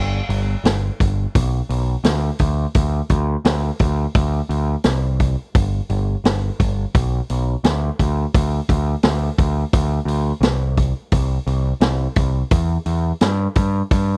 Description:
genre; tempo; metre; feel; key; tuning
blues rock power trio and southern rock; 86 BPM; 4/4; straight; G major; A4 = 440 Hz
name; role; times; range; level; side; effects
growling picked electric bass; bass; 0.0-14.2 s; G1 to G2; -19 LUFS; equal; overdrive
vintage drum kit; drums; 0.3-14.1 s; hi-hat, kick drum, snare drum; -18 LUFS; equal; none
room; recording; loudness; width
little or no reverb; dry, close 1970s-style studio recording; -16 LUFS; side -30 dB against mid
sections
0.0-14.2 A section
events
none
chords
none

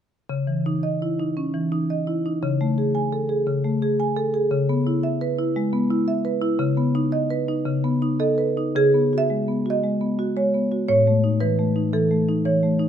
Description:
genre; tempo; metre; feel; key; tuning
classical, contemporary piece for solo marimba; 114 BPM; 4/4; rubato; C# minor; A4 = 439 Hz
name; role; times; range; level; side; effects
marimba with medium hard mallets; solo; 0.3-12.9 s; A2 to G#5; -20 LUFS; equal; none
room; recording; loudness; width
light reverb; close, detailed microphones; -20 LUFS; side -9 dB against mid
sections
0.3-8.8 A section; 8.8-12.9 B section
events
none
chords
0.3 C#madd9; 2.4 Amaj7/C#; 4.5 C#m7; 6.6 B9/C#; 8.8 C#m11; 10.9 A

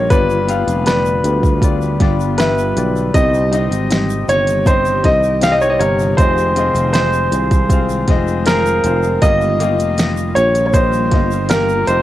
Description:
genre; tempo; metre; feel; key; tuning
pop ballad; 79 BPM; 4/4; straight; F minor; A4 = 436 Hz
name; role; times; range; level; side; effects
warm concert grand piano; melody; 0.0-12.0 s; Bb4 to F5; -16 LUFS; right 1 dB; cassette tape, plate reverb
clear upright piano; accompaniment; 0.0-12.0 s; G2 to F5; -22 LUFS; left 8 dB; cassette tape, plate reverb
ethereal airy pad; sustained chords; 0.0-12.0 s; C3 to G4; -24 LUFS; equal; ensemble chorus, built-in reverb, cassette tape
sustaining fretless electric bass; bass; 0.0-12.0 s; F1 to D2; -19 LUFS; equal; none
smooth R&B drum kit; drums; 0.1-12.0 s; hi-hat, kick drum, snare drum; -16 LUFS; equal; cassette tape
tube shaker; percussion; 0.1-12.0 s; none; -38 LUFS; right 12 dB; none
room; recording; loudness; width
light reverb; home recording on cassette; -12 LUFS; side -14 dB against mid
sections
0.0-12.0 A section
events
none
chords
0.1 G7; 3.1 Cm; 6.2 Fm7; 9.2 Ebadd9

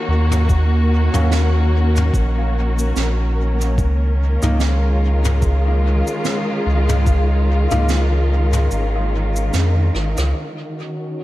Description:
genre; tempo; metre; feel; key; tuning
ambient dub; 73 BPM; 4/4; swing 57% on 16ths; unclear; A4 = 439 Hz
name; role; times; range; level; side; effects
dark studio string section; sustained chords; 0.0-11.2 s; Eb3 to Bb4; -22 LUFS; left 1 dB; vintage 12-bit sampler grit, low-pass filter
warm sub bass; bass; 0.1-10.3 s; Ab1 to F2; -16 LUFS; equal; none
vintage brush drum kit; drums; 0.3-10.3 s; cabasa, rim click, snare drum, toms; -26 LUFS; right 1 dB; low-pass filter on snare, low-pass filter on toms, low-pass filter on perc, low-pass filter on room, dub echo
electronic kick drum; drums; 0.5-7.3 s; none; -20 LUFS; equal; none
clear upright piano; stabs; 1.1-7.9 s; Gb3 to F4; -29 LUFS; equal; vintage 12-bit sampler grit, dub echo
room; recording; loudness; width
light reverb, small room ambience; none; -15 LUFS; side -16 dB against mid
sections
0.0-10.4 A section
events
break 8.7-10.4; drum fill 9.9-10.4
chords
0.0 Ebm7; 3.8 Db69; 10.4 Ebm7

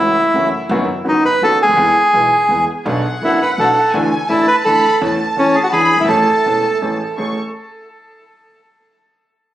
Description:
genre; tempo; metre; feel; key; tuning
tango; 167 BPM; 3/4; rubato; A major; A4 = 440 Hz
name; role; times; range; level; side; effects
bandoneon; melody; 0.0-6.8 s; C#4 to B4; -14 LUFS; right 1 dB; tape echo
warm concert grand piano; accompaniment; 0.0-7.3 s; E1 to A4; -20 LUFS; equal; none
upright bass; bass; 0.0-7.3 s; E1 to E2; -27 LUFS; equal; none
warm chamber violin section; second line; 2.8-7.3 s; F#5 to C#6; -21 LUFS; equal; none
room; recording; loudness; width
moderate club reverb, RT60 0.7 s; recorded on a phone in the room, club reverb, compression; -12 LUFS; side -13 dB against mid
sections
0.0-7.2 A section; 7.2-8.3 B section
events
none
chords
0.0 F#m7; 0.7 B/F#; 1.8 E; 2.9 Bm7; 3.9 Dsus2; 5.0 A/E; 5.7 E7; 6.1 Amaj7

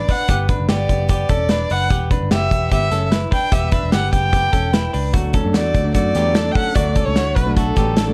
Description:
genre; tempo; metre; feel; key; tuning
jangly indie pop; 148 BPM; 4/4; straight; unclear; A4 = 440 Hz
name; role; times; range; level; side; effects
warm violin; melody; 0.0-8.1 s; A4 to G5; -24 LUFS; equal; slapback echo
direct-recorded clean electric guitar; arpeggios; 0.0-8.1 s; A3 to B4; -27 LUFS; equal; plate reverb
vintage muted picked electric bass; bass; 0.0-8.1 s; E1 to F#2; -24 LUFS; equal; none
loose indie drum kit; drums; 0.1-8.1 s; hi-hat, kick drum, snare drum; -21 LUFS; equal; none
fingerpicked steel-string acoustic guitar; accompaniment; 5.1-8.1 s; D3 to D4; -27 LUFS; equal; none
room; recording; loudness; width
light reverb; none; -18 LUFS; mono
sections
0.0-8.1 A section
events
none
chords
0.0 Em; 5.1 D

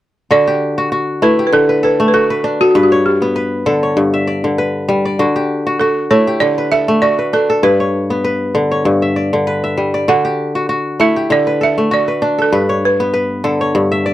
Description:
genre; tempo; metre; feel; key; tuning
west african traditional; 98 BPM; 4/4; swing 55% on 16ths; D major; A4 = 441 Hz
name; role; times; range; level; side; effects
balafon; melody; 0.3-14.1 s; F#4 to F#5; -14 LUFS; right 2 dB; none
kora; arpeggios; 0.3-14.1 s; G2 to E5; -14 LUFS; left 1 dB; none
room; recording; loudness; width
light reverb; dry, close 1970s-style studio recording; -12 LUFS; side -14 dB against mid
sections
0.3-14.1 A section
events
none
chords
0.3 D; 2.7 G; 5.2 D; 7.6 G; 10.1 D; 12.5 G

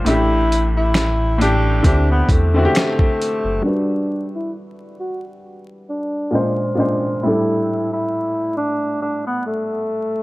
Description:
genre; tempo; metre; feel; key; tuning
lo-fi hip hop; 67 BPM; 4/4; swing 55% on 16ths; G major; A4 = 439 Hz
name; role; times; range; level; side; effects
clear upright piano; accompaniment; 0.0-10.2 s; A2 to C5; -21 LUFS; equal; low-pass filter
sub bass with octave; bass; 0.0-3.6 s; F#1 to E2; -18 LUFS; equal; none
breathy tenor saxophone; melody; 0.1-10.2 s; A3 to F#4; -21 LUFS; equal; low-pass filter
dusty soul sampler-style drum kit; drums; 0.1-3.4 s; finger snaps, hi-hat, kick drum, snare drum; -17 LUFS; equal; none
room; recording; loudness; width
light reverb; vinyl crackle; -16 LUFS; side -19 dB against mid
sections
0.0-3.6 A section; 3.6-10.2 B section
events
filter sweep 3.6-10.2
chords
0.1 A7sus4; 1.8 D9sus4; 3.6 Gmaj7; 6.3 Bb9; 7.2 A7sus4

